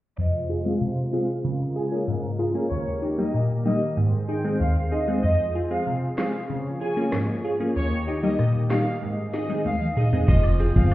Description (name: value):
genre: dancehall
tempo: 95 BPM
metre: 4/4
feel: straight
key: F minor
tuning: A4 = 440 Hz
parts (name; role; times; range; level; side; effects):
- warm studio violin section; melody; 0.2-10.9 s; Db5 to Ab5; -31 LUFS; right 1 dB; low-pass filter, ping-pong delay
- wavetable chord stab; accompaniment; 0.2-10.9 s; Eb2 to Ab4; -24 LUFS; equal; low-pass filter
- warm analog pad; sustained chords; 0.2-10.9 s; C3 to Eb5; -31 LUFS; equal; chorus, sidechain pumping, low-pass filter
- island pop drum kit; drums; 6.2-10.9 s; crash cymbal, handclaps, hi-hat, kick drum, rim click, snare drum, toms; -23 LUFS; equal; none
- clean electric guitar; arpeggios; 10.3-10.9 s; F3 to C4; -28 LUFS; right 1 dB; spring reverb
- organ-like FM bass; bass; 10.3-10.9 s; F1 to G1; -19 LUFS; equal; none
- woodblock and cabasa; percussion; 10.4-10.9 s; none; -41 LUFS; left 2 dB; none
room: moderate echo chamber reverb, RT60 1.4 s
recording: heard muffled through a wall, stone room reverb, EQ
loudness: -22 LUFS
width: side -16 dB against mid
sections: 0.2-10.3 A section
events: filter sweep 0.2-10.3; drum fill 9.7-10.3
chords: 0.2 Fm; 1.4 Db6; 2.7 Eb; 4.0 Ab; 5.2 Fm; 6.5 Db6; 7.8 Eb; 9.0 Ab; 10.3 Fm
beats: | 0.18 0.81 1.44 2.07 | 2.71 3.34 3.97 4.60 | 5.23 5.86 6.50 7.13 | 7.76 8.39 9.02 9.65 | 10.28 10.92